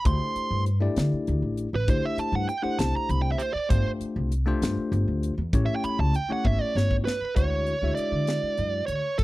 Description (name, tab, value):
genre	electric jazz fusion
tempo	66 BPM (dotted quarters)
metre	6/8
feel	straight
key	unclear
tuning	A4 = 441 Hz
part	bluesy overdriven lead guitar	melody	0.0-9.2 s	A4 to C6	-28 LUFS	right 3 dB	distortion, slapback echo
part	bell-like tine electric piano	accompaniment	0.0-8.8 s	G#3 to E5	-30 LUFS	left 4 dB	phaser
part	upright bass	bass	0.1-9.2 s	G1 to D3	-26 LUFS	equal	none
part	crisp fusion drum kit	drums	0.1-9.2 s	hi-hat, kick drum, snare drum, toms	-26 LUFS	equal	none
room	little or no reverb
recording	dry, close 1970s-style studio recording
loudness	-23 LUFS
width	side -18 dB against mid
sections	0.0-7.4 A section; 7.4-9.2 B section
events	lead electric guitar solo 0.0-7.4; drum fill 6.5-7.4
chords	0.1 D9sus4; 3.7 G9sus4; 5.5 A7; 7.4 Dmaj9#11